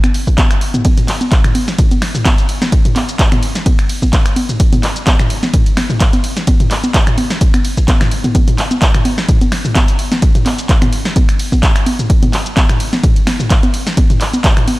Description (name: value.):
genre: house.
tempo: 128 BPM.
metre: 4/4.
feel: swing 55% on 16ths.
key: none.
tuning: none.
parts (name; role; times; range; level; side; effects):
punchy analog drum machine; drums; 0.0-14.8 s; congas, finger snaps, handclaps, hi-hat, ride cymbal, shaker, snare drum, toms; -15 LUFS; equal; none.
electronic kick drum; drums; 0.3-14.5 s; none; -12 LUFS; equal; none.
room: light reverb.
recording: none.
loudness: -11 LUFS.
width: side -19 dB against mid.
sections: 0.0-14.8 A section.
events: none.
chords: none.